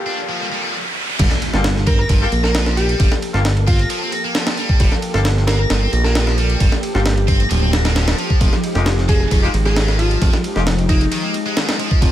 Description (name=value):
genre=breakbeat, breaks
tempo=133 BPM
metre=4/4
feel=straight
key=G minor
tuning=A4 = 443 Hz
part: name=thumb-piano-like synth pluck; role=melody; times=0.0-11.5 s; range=Eb4 to Bb4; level=-26 LUFS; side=equal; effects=chorus, small speaker sound, digital delay
part: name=lush unison pad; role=sustained chords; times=0.0-12.1 s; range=F3 to A4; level=-26 LUFS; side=equal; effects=chorus, phaser, sidechain pumping
part: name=bright horn section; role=stabs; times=0.0-10.6 s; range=Ab3 to A4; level=-27 LUFS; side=left 4 dB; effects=digital delay
part: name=riser and impact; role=sound effects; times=0.0-3.0 s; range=none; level=-25 LUFS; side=right 1 dB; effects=none
part: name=heavy high-gain guitar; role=riff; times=0.1-12.1 s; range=Eb3 to D4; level=-24 LUFS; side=equal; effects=distortion, tube saturation, digital delay
part: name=fat analog bass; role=bass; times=1.2-12.1 s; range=D1 to Bb1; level=-17 LUFS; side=equal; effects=none
part: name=breakbeat sampler-style drum kit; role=drums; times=1.2-12.1 s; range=crash cymbal, kick drum, ride cymbal, snare drum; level=-18 LUFS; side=equal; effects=studio reverb
room=digital ambience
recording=none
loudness=-14 LUFS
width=side -12 dB against mid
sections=0.0-1.2 A section; 1.2-12.1 B section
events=riser 0.0-1.2; filter sweep on analog synth pad 0.0-1.2; drop 1.2-12.1; impact 1.2-3.0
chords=0.0 Gm9; 1.0 N.C.; 1.2 Gm9; 8.2 Fm9